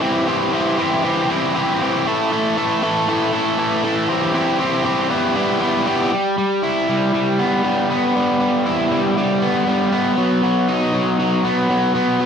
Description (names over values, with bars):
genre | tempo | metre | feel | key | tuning
rock | 118 BPM | 4/4 | straight | E minor, E harmonic minor from 6.1 s | A4 = 441 Hz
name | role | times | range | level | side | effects
crunchy overdriven guitar | solo | 0.0-12.3 s | E3 to A4 | -16 LUFS | equal | slapback echo
room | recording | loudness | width
moderate small room reverb, RT60 0.5 s | rough home demo mix | -16 LUFS | side -7 dB against mid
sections
0.0-6.1 A section; 6.1-12.3 B section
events
none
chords
0.0 C; 2.1 Esus4; 4.1 C; 5.1 Em; 10.2 B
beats
| 0.04 0.54 1.05 1.56 | 2.06 2.57 3.08 3.58 | 4.09 4.60 5.11 5.61 | 6.12 6.63 7.14 7.64 | 8.15 8.66 9.17 9.68 | 10.18 10.69 11.20 11.70 | 12.21